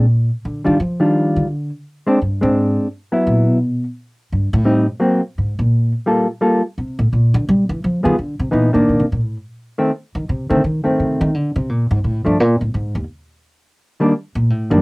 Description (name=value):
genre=jazz, small-group swing and bop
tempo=171 BPM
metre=4/4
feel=swing 64% on 8ths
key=unclear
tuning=A4 = 440 Hz
part: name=hollow-body jazz guitar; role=accompaniment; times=0.0-14.8 s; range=Eb3 to A4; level=-14 LUFS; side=equal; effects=cassette tape
part: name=upright bass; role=bass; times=0.0-14.8 s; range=Eb2 to G3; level=-17 LUFS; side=equal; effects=none
room=moderate booth ambience, RT60 0.2 s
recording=home recording on cassette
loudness=-15 LUFS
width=side -26 dB against mid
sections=0.0-8.5 A section; 8.5-14.8 A section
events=upright bass solo 0.0-14.8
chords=0.1 Ebmaj9; 1.5 Abmaj7#11; 2.9 F#add11/A#; 4.3 Am7b5; 5.0 Ab9; 5.7 Gm9; 7.8 G7b9; 8.5 Cm9; 9.9 Cm6; 11.3 Bbmaj7; 12.7 Ebsus4; 13.4 Bb; 14.1 Ebmaj7